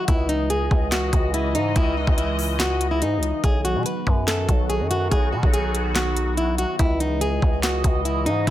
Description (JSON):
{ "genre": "hip hop, trap", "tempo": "143 BPM", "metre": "4/4", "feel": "half-time", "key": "C# minor", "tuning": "A4 = 438 Hz", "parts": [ { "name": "flamenco guitar", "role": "melody", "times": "0.0-8.5 s", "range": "D#4 to B4", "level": "-24 LUFS", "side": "left 1 dB", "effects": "ping-pong delay" }, { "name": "sweeping resonant pad", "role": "sustained chords", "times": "0.0-8.5 s", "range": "C#3 to D#5", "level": "-29 LUFS", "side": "right 1 dB", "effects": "chorus" }, { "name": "growling 808-style bass", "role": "bass", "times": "0.1-8.5 s", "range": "B1 to B2", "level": "-24 LUFS", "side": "equal", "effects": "none" }, { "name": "trap drum kit", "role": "drums", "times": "0.1-8.5 s", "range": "handclaps, hi-hat, kick drum, snare drum", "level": "-22 LUFS", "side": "equal", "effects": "none" } ], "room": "light reverb", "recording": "none", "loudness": "-19 LUFS", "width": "side -13 dB against mid", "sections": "0.0-8.5 A section", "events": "none", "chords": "0.1 C#madd9; 3.4 B; 6.8 C#madd9" }